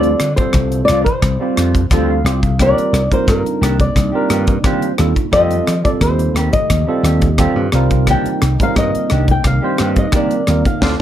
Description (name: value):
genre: electric jazz fusion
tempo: 88 BPM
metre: 4/4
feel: straight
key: C dorian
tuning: A4 = 438 Hz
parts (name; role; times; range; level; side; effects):
- flamenco guitar; melody; 0.0-10.9 s; Bb4 to G5; -19 LUFS; left 2 dB; none
- barky tine electric piano; accompaniment; 0.0-11.0 s; G3 to G5; -20 LUFS; right 4 dB; lush chorus
- mellow electric guitar; stabs; 0.0-11.0 s; Eb3 to G4; -23 LUFS; left 1 dB; wide subtle chorus
- slap bass; bass; 0.0-11.0 s; C2 to F3; -16 LUFS; equal; none
- crisp fusion drum kit; drums; 0.0-11.0 s; hi-hat, kick drum, rim click, snare drum; -18 LUFS; equal; none
- dark analog pad; sustained chords; 3.1-11.0 s; Eb3 to G4; -26 LUFS; right 1 dB; chorus
room: light reverb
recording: dark, warm production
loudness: -12 LUFS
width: side -11 dB against mid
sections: 0.0-11.0 A section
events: tine electric piano fill 1.6-2.6; drum fill 10.8; band accent 10.8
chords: 0.0 Dm7; 2.6 Cm9; 5.3 F9; 7.7 Cm9